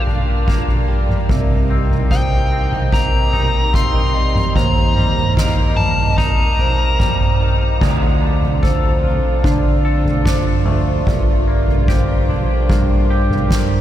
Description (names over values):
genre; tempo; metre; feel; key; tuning
post-rock; 74 BPM; 4/4; straight; unclear; A4 = 441 Hz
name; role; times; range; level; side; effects
smooth overdriven lead guitar; melody; 0.0-7.4 s; G5 to C6; -22 LUFS; left 2 dB; diffuse ambient delay
dark symphonic string section; sustained chords; 0.0-13.8 s; C3 to F4; -27 LUFS; equal; none
twangy electric guitar; arpeggios; 0.0-13.8 s; Eb2 to A4; -26 LUFS; left 2 dB; lush chorus, diffuse ambient delay
overdriven picked electric bass; bass; 0.0-13.8 s; G1 to D3; -22 LUFS; equal; none
vibraphone with medium mallets; arpeggios; 0.1-13.8 s; Bb4 to Eb5; -26 LUFS; right 3 dB; diffuse ambient delay
soft-mallet drum kit; drums; 0.1-13.7 s; crash cymbal, kick drum, snare drum, toms; -16 LUFS; equal; none
room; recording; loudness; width
light reverb, small room ambience; none; -13 LUFS; side -12 dB against mid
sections
0.0-7.8 A section; 7.8-13.8 B section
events
none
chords
0.0 Gm7; 1.3 Cm7; 4.6 Eb6; 7.8 Dm7; 11.1 Gm7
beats
0.48 | 1.30 2.11 2.93 3.75 | 4.56 5.38 6.19 7.00 | 7.82 8.63 9.45 10.26 | 11.07 11.88 12.70 13.51